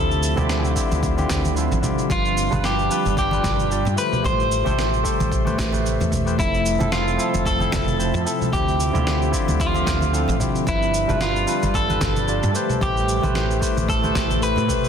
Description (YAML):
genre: sunset chillout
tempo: 112 BPM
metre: 4/4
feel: swing 55% on 16ths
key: unclear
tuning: A4 = 440 Hz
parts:
  - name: electric guitar at the edge of break-up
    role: melody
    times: 0.0-14.9 s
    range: E4 to C5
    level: -24 LUFS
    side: equal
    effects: digital delay, shimmer reverb
  - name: barky tine electric piano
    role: accompaniment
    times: 0.0-14.9 s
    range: D3 to E5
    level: -26 LUFS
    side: moving between left 4 dB and right 5 dB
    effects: auto-pan, digital delay, shimmer reverb
  - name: ethereal airy pad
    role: sustained chords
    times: 0.0-14.9 s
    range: C3 to E5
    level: -28 LUFS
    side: equal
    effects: ensemble chorus, built-in reverb
  - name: woody fretless electric bass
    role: bass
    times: 0.0-14.7 s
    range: F1 to A2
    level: -24 LUFS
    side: equal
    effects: ensemble chorus
  - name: electronic shaker, congas and snare drum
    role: drums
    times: 0.1-14.9 s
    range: none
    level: -28 LUFS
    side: right 2 dB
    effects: none
  - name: congas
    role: percussion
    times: 0.4-14.7 s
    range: none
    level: -31 LUFS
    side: right 2 dB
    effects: none
  - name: electronic kick drum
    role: drums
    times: 0.8-14.8 s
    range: none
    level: -26 LUFS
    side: equal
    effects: overdrive
room: light reverb, digital ambience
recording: dense, heavily limited modern master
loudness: -18 LUFS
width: side -7 dB against mid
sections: 0.0-14.9 A section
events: none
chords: 0.0 Dm11; 2.1 G7; 4.0 Am9; 6.4 Fmaj7; 8.5 Dm11; 10.7 G7; 12.5 Am9